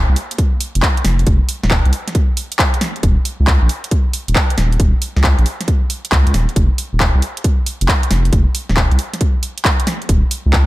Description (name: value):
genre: UK garage, two-step garage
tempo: 136 BPM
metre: 4/4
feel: swing 67% on 16ths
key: unclear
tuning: A4 = 439 Hz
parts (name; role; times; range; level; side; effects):
- saturated sub bass; bass; 0.0-10.6 s; Eb1 to Db2; -14 LUFS; equal; tube saturation
- house drum kit; drums; 0.2-10.6 s; handclaps, hi-hat, snare drum; -19 LUFS; equal; overdrive
- electronic kick drum; drums; 0.4-10.7 s; none; -15 LUFS; equal; overdrive
room: little or no reverb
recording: echo-heavy mix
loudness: -13 LUFS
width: side -17 dB against mid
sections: 0.0-10.7 A section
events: none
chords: none